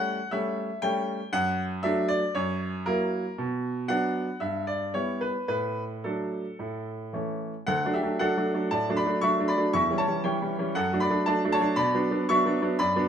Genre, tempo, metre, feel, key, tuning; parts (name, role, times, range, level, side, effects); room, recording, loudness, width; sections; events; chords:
classical-period piano sonatina; 117 BPM; 4/4; rubato; D major; A4 = 442 Hz
bright baby grand piano; solo; 0.0-13.1 s; D2 to C#6; -25 LUFS; equal
wet large studio reverb, RT60 1.3 s; -25 LUFS; side -8 dB against mid
0.0-7.7 A section; 7.7-13.1 B section
0.0 A7; 1.3 D/F#; 2.4 F#7; 3.4 Bm; 4.4 Em/G; 5.5 D/A; 6.6 A; 7.7 D; 9.7 C#dim/E; 10.8 D/F#; 11.8 Bm